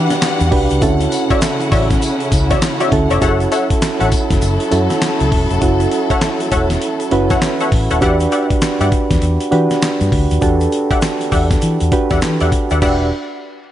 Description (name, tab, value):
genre	R&B, new jack swing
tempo	100 BPM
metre	4/4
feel	swing 62% on 16ths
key	unclear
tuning	A4 = 437 Hz
part	soft electric-piano-like synth keys	accompaniment	0.0-13.1 s	C#4 to B4	-17 LUFS	right 2 dB	chorus
part	warm studio string section	sustained chords	0.0-8.0 s	C#3 to F#5	-22 LUFS	left 2 dB	none
part	vintage muted fingered electric bass	bass	0.0-13.1 s	D#1 to E3	-17 LUFS	equal	none
part	dusty soul sampler-style drum kit	drums	0.1-13.0 s	crash cymbal, handclaps, hi-hat, kick drum, snare drum, tambourine	-18 LUFS	equal	gated reverb
part	egg shaker	percussion	0.1-13.1 s	none	-36 LUFS	left 7 dB	none
part	funky polysynth comp	stabs	1.3-13.1 s	F#4 to F#5	-20 LUFS	left 2 dB	chorus, digital delay
room	light reverb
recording	nothing above 10.6 kHz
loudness	-13 LUFS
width	side -12 dB against mid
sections	0.0-3.2 A section; 3.2-12.8 B section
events	none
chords	0.0 Em9; 0.8 Dmaj9; 3.2 F#m7; 8.0 Em9